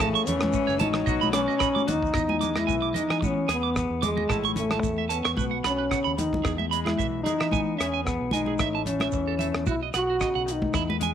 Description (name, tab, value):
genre	highlife guitar band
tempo	112 BPM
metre	4/4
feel	swing 54% on 16ths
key	E major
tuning	A4 = 440 Hz
part	dark trombone	melody	0.0-10.9 s	G#3 to F#4	-27 LUFS	equal	slapback echo
part	edgy tenor saxophone	second line	0.0-1.9 s	C#3 to F#3	-35 LUFS	left 12 dB	none
part	semi-hollow electric guitar	accompaniment	0.0-11.1 s	E2 to G#4	-35 LUFS	left 13 dB	none
part	electric guitar at the edge of break-up	arpeggios	0.0-11.1 s	E4 to D6	-29 LUFS	right 13 dB	slapback echo
part	fingered electric bass	bass	0.0-11.1 s	F#1 to E3	-33 LUFS	equal	none
part	damped 70s drum kit	drums	0.0-11.1 s	hi-hat, kick drum, rim click	-31 LUFS	equal	none
part	congas	percussion	0.0-11.1 s	none	-32 LUFS	left 2 dB	none
part	shekere	percussion	0.1-11.1 s	none	-37 LUFS	right 8 dB	none
room	light reverb, small room ambience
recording	1960s-style stereo with parts hard left and right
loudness	-23 LUFS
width	side -9 dB against mid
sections	0.0-2.2 A section; 2.2-11.1 B section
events	none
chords	0.0 A; 1.1 B; 2.2 Emaj7; 4.3 A; 5.4 B; 6.5 Emaj7; 8.6 A; 9.7 B